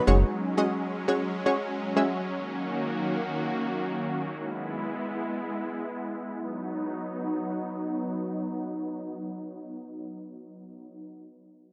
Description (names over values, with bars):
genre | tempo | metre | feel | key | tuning
pop | 119 BPM | 4/4 | straight | B major | A4 = 440 Hz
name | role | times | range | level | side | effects
analog pluck | accompaniment | 0.0-2.2 s | G#3 to E5 | -28 LUFS | equal | chorus, plate reverb
supersaw pad | sustained chords | 0.0-11.0 s | D#3 to F#4 | -33 LUFS | equal | none
room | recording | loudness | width
wet studio reverb, RT60 0.7 s | rough home demo mix, low-pass filter | -30 LUFS | mono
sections
0.0-6.4 A section; 6.4-10.4 B section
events
none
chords
0.1 F#sus2; 2.3 D#m7; 4.4 E; 6.4 B